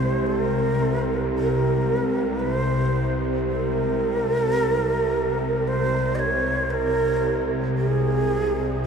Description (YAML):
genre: dark ambient drone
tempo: 56 BPM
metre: 4/4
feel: straight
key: unclear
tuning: A4 = 437 Hz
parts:
  - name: breathy mellow shakuhachi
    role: melody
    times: 0.0-8.9 s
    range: Ab4 to Eb5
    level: -24 LUFS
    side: right 2 dB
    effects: tape echo
  - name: bowed-like drone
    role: drone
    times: 0.0-8.9 s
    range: C2 to C3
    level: -23 LUFS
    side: equal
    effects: built-in reverb
  - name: bronze singing bowl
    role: texture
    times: 0.0-8.9 s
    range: Ab3 to G5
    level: -37 LUFS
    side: left 3 dB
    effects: none
room: wet huge ambient reverb, RT60 8.5 s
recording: in a vast, echoing space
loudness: -20 LUFS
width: side -6 dB against mid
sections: 0.0-8.9 A section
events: none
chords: 0.0 Abadd9/C